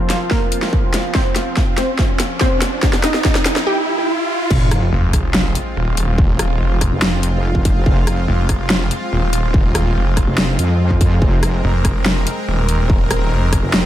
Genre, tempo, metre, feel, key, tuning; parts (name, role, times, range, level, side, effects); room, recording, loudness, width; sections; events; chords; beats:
heavy wobble dubstep; 143 BPM; 4/4; half-time; F minor; A4 = 441 Hz
wide unison pluck; melody; 0.0-4.4 s; Bb3 to G5; -22 LUFS; equal; cassette tape, digital delay
supersaw pad; sustained chords; 0.0-13.9 s; F3 to Bb4; -24 LUFS; equal; sidechain pumping, low-pass filter
riser and sub drop; sound effects; 0.6-6.2 s; -22 LUFS; right 1 dB
dubstep drum kit; drums; 0.1-13.8 s; crash cymbal, hi-hat, rim click, snare drum; -20 LUFS; equal; high-pass filter on hats, high-pass filter on snare, high-pass filter on cymbals
electronic kick drum; drums; 0.3-13.6 s; -17 LUFS; equal; distortion
wobble bass; bass; 4.5-13.9 s; F1 to F2; -17 LUFS; equal; chorus, overdrive
snarling distorted saw bass; bass; 4.9-13.6 s; Eb1 to F1; -17 LUFS; equal; distortion, overdrive
little or no reverb; -14 LUFS; side -12 dB against mid
0.0-4.5 A section; 4.5-13.9 B section
build-up 0.0-4.5; drum fill 0.0-3.7; filter sweep on supersaw synth 0.0-4.5; riser 0.6-4.5; break 3.7-4.5; drop 4.5-13.9; impact 4.5-6.2
0.0 F5; 4.5 Fm
0.31 0.73 | 1.15 1.57 1.99 2.41 | 2.83 3.25 3.67 4.08 | 4.50 4.92 5.34 5.76 | 6.18 6.60 7.02 7.44 | 7.86 8.28 8.70 9.12 | 9.54 9.96 10.38 10.80 | 11.22 11.64 12.06 12.48 | 12.90 13.32 13.74